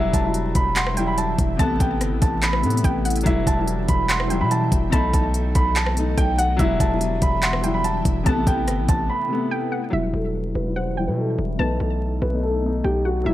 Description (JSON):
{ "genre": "hip hop, trap", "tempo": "144 BPM", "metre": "4/4", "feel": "half-time", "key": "E harmonic minor", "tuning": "A4 = 440 Hz", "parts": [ { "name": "dark concert grand piano", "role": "melody", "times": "0.0-13.3 s", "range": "E4 to C6", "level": "-26 LUFS", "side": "right 2 dB", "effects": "low-pass filter" }, { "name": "soft round pluck", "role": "second line", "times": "0.0-13.3 s", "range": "E5 to A5", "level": "-31 LUFS", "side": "equal", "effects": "chorus, digital delay" }, { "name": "felt-muted upright piano", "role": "accompaniment", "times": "0.0-13.3 s", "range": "B2 to E4", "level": "-26 LUFS", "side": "left 3 dB", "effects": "low-pass filter" }, { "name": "ethereal airy pad", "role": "sustained chords", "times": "0.0-13.3 s", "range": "E3 to G5", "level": "-31 LUFS", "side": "equal", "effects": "ensemble chorus, built-in reverb, phaser, low-pass filter" }, { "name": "hard-hitting 808-style bass", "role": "bass", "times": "0.0-13.3 s", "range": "E1 to B2", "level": "-24 LUFS", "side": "equal", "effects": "none" }, { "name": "trap drum kit", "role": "drums", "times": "0.1-9.0 s", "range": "handclaps, hi-hat, kick drum, rim click", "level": "-22 LUFS", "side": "equal", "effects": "overdrive" } ], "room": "light reverb", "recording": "vinyl crackle", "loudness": "-19 LUFS", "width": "side -14 dB against mid", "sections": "0.0-9.9 A section; 9.9-13.3 B section", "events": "break 9.1-9.9; filter sweep 9.9-13.3", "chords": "0.0 Emadd9; 1.6 Amadd9; 3.3 Emadd9; 4.9 B7; 6.6 Emadd9; 8.3 Amadd9; 9.9 Emadd9; 11.6 B7" }